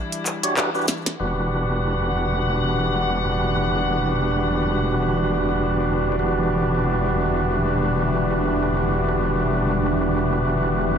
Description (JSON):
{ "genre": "glitch hop", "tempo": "96 BPM", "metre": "4/4", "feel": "swing 57% on 16ths", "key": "E minor", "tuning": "A4 = 441 Hz", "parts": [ { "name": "dark studio string section", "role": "sustained chords", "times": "0.0-11.0 s", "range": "E3 to F#5", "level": "-28 LUFS", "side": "left 2 dB", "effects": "low-pass filter" }, { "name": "glitchy drum kit", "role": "drums", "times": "0.1-11.0 s", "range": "handclaps, hi-hat, shaker, snare drum", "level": "-24 LUFS", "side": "equal", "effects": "low-pass filter on perc, low-pass filter on hats, low-pass filter on snare" }, { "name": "tonewheel organ", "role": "stabs", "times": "0.4-11.0 s", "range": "D4 to C#5", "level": "-23 LUFS", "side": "right 1 dB", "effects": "overdrive, fast rotary speaker, low-pass filter, dub echo" }, { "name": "wobble bass", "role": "bass", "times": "1.2-11.0 s", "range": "E1", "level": "-24 LUFS", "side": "equal", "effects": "chorus, overdrive" }, { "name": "deep dark ambient pad", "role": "texture", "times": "2.8-11.0 s", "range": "G3 to F#5", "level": "-28 LUFS", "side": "right 1 dB", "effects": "chorus, built-in reverb" } ], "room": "light reverb", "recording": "none", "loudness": "-19 LUFS", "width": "side -7 dB against mid", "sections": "0.0-1.2 A section; 1.2-11.0 B section", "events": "break 0.0-1.2; band accent 0.6-0.9; drum fill 0.9-1.2; filter sweep on string section 1.2-11.0", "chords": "0.0 Em9" }